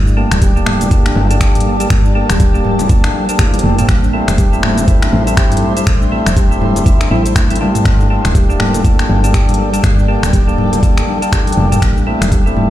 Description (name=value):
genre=afro house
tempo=121 BPM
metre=4/4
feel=swing 59% on 16ths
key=G dorian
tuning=A4 = 444 Hz
part: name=ethereal airy pad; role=sustained chords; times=0.8-12.7 s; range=Bb3 to C6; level=-25 LUFS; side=right 1 dB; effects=ensemble chorus, built-in reverb, tremolo, sidechain pumping
part: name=handpan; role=arpeggios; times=0.0-12.6 s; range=G3 to G4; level=-19 LUFS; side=right 1 dB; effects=vintage 12-bit sampler grit, sidechain pumping, digital delay
part: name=woody FM bass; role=bass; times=0.0-12.7 s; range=D1 to A1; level=-16 LUFS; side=equal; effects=sidechain pumping
part: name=afro-pop drum kit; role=drums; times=0.1-12.7 s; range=finger snaps, hi-hat, shaker, toms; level=-20 LUFS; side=left 1 dB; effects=studio ambience
part: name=percussive tonewheel organ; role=stabs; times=0.2-12.7 s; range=A3 to A4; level=-20 LUFS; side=left 2 dB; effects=overdrive, stopped rotary speaker, sidechain pumping, digital delay
part: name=congas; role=percussion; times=0.3-12.7 s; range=none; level=-21 LUFS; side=left 2 dB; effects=none
part: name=electronic kick drum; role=drums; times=0.4-12.4 s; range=none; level=-12 LUFS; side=equal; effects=studio ambience
room=little or no reverb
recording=played on a big sound system in a bare room, large studio reverb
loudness=-10 LUFS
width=side -13 dB against mid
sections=0.0-12.7 A section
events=none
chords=0.0 Gmadd9; 3.9 Am; 7.9 Gmadd9; 11.8 Am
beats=0.42 0.91 1.41 | 1.91 2.40 2.90 3.39 | 3.89 4.38 4.88 5.38 | 5.87 6.37 6.86 7.36 | 7.86 8.35 8.85 9.34 | 9.84 10.34 10.83 11.33 | 11.82 12.32